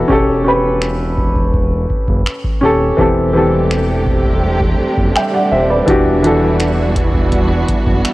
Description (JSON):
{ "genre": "contemporary R&B", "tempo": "83 BPM", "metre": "4/4", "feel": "straight", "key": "unclear", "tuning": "A4 = 439 Hz", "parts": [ { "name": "warm baby grand piano", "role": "accompaniment", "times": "0.0-8.1 s", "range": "E3 to G5", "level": "-15 LUFS", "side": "equal", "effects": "none" }, { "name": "smooth synth bass", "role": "bass", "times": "0.0-8.0 s", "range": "D#1 to F#1", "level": "-18 LUFS", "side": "equal", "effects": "none" }, { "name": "booming analog drum machine", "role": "drums", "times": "0.1-8.1 s", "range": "finger snaps, hi-hat, kick drum", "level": "-17 LUFS", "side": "equal", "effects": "cassette tape" }, { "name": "warm studio string section", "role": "sustained chords", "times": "3.0-8.1 s", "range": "C3 to G4", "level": "-18 LUFS", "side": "right 2 dB", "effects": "sidechain pumping" } ], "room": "little or no reverb", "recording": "home recording on cassette", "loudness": "-12 LUFS", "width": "side -18 dB against mid", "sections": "0.0-8.1 A section", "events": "none", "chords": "0.1 A7/E; 3.0 D7sus4/E; 5.9 Em9" }